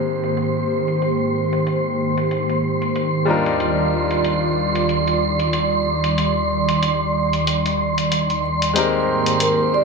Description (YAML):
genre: sunset chillout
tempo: 93 BPM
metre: 4/4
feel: swing 57% on 16ths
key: Ab lydian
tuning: A4 = 441 Hz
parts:
  - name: bright concert grand piano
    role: accompaniment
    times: 0.0-9.8 s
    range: G3 to Bb4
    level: -25 LUFS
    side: moving between left 6 dB and right 2 dB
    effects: auto-pan, low-pass filter, ping-pong delay
  - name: airy breathy pad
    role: sustained chords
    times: 0.0-9.8 s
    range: Eb2 to D5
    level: -20 LUFS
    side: right 1 dB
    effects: chorus
  - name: wind-like tuned noise texture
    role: texture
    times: 0.0-9.8 s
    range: C6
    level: -24 LUFS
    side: right 2 dB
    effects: built-in reverb
  - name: electronic hi-hat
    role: drums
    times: 0.2-9.6 s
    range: none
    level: -27 LUFS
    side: left 2 dB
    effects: low-pass filter on perc, low-pass filter on hats, low-pass filter on snare, low-pass filter on room
  - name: vibraphone with soft mallets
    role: melody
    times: 9.4-9.8 s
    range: Bb4 to D5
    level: -18 LUFS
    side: equal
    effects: vintage 12-bit sampler grit
room: moderate plate reverb, RT60 1.7 s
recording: none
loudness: -17 LUFS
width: side -4 dB against mid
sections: 0.0-9.8 A section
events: filter sweep on drum 0.0-9.8; filter sweep on grand piano 0.0-9.8; filter sweep on analog synth pad 0.0-9.8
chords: 0.0 Abmaj9; 3.3 Ebmaj9; 8.8 Abmaj9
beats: 0.38 | 1.02 1.67 2.31 2.96 | 3.60 4.25 4.89 5.54 | 6.18 6.83 7.47 8.12 | 8.76 9.41